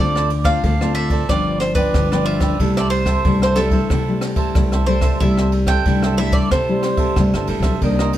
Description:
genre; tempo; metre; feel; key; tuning
samba and choro; 92 BPM; 4/4; straight; C major; A4 = 440 Hz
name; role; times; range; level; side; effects
bowl-back mandolin; melody; 0.0-7.5 s; A4 to G5; -22 LUFS; right 1 dB; none
cavaquinho; accompaniment; 0.0-8.2 s; Eb4 to E5; -27 LUFS; right 7 dB; none
nylon-string guitar; accompaniment; 0.0-8.2 s; G2 to F4; -22 LUFS; left 3 dB; none
upright bass; bass; 0.0-8.1 s; G1 to C3; -20 LUFS; equal; none
jazz brush drum kit; drums; 0.2-8.2 s; kick drum, ride cymbal, rim click; -21 LUFS; equal; none
room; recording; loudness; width
light reverb; dark, warm production; -15 LUFS; side -12 dB against mid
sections
0.0-7.8 A section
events
none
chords
0.0 Dm7; 1.3 G7; 2.6 C6

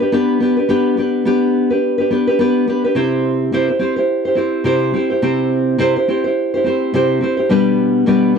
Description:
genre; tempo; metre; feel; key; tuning
pop; 106 BPM; 4/4; swing 60% on 16ths; unclear; A4 = 440 Hz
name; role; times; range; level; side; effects
nylon-string guitar; solo; 0.0-8.4 s; B2 to C5; -14 LUFS; equal; none
room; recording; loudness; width
light reverb; dry, close 1970s-style studio recording; -14 LUFS; side -6 dB against mid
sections
0.0-3.0 A section; 3.0-8.4 B section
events
none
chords
0.0 G/B; 3.0 C; 7.5 G/B

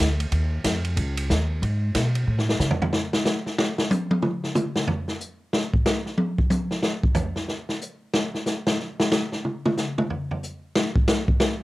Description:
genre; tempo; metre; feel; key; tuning
jazz, big band swing; 184 BPM; 4/4; swing 63% on 8ths; unclear; A4 = 440 Hz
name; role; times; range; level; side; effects
upright bass; bass; 0.0-2.8 s; C#2 to C#3; -23 LUFS; equal; none
swinging big-band drum kit; drums; 0.0-11.5 s; hi-hat, kick drum, ride cymbal, snare drum, toms; -22 LUFS; equal; cassette tape
room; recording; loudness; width
light reverb; home recording on cassette; -22 LUFS; side -18 dB against mid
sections
0.0-2.9 A section; 2.9-11.6 B section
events
drum fill 2.3-2.9; drum solo 2.9-11.6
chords
none

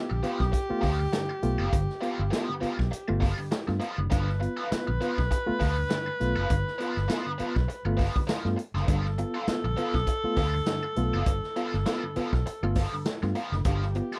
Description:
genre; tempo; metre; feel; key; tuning
funk; 101 BPM; 4/4; swing 56% on 16ths; G mixolydian; A4 = 439 Hz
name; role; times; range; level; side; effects
breathy tenor saxophone; second line; 0.0-14.2 s; G4 to B4; -36 LUFS; equal; none
overdriven reed electric piano; stabs; 0.0-14.1 s; G2 to F4; -35 LUFS; equal; fast tremolo
raw garage guitar; accompaniment; 0.1-14.2 s; B3 to B4; -37 LUFS; equal; wah, overdrive
vintage muted fingered electric bass; bass; 0.1-14.0 s; F#1 to G2; -31 LUFS; equal; none
swinging big-band drum kit; drums; 0.2-14.2 s; hi-hat, kick drum, snare drum; -32 LUFS; equal; none
room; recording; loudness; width
little or no reverb; none; -28 LUFS; mono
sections
0.0-14.2 A section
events
none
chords
0.0 G9

